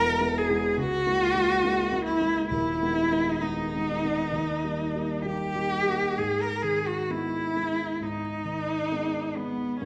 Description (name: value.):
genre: classical, romantic duo for cello and grand piano.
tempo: 66 BPM.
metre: 4/4.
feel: rubato.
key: G# minor.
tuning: A4 = 440 Hz.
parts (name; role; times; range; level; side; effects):
warm cello; melody; 0.0-9.9 s; B3 to A#4; -28 LUFS; equal; none.
dark concert grand piano; accompaniment; 0.0-9.9 s; D#1 to E4; -33 LUFS; equal; none.
room: wet recital hall reverb, RT60 1.6 s.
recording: vinyl crackle.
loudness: -27 LUFS.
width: mono.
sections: 0.0-6.2 A section; 6.2-9.9 B section.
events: none.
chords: 0.0 E; 0.8 A#m7b5/C#; 2.5 G#m/D#; 4.4 D#; 6.2 G#m.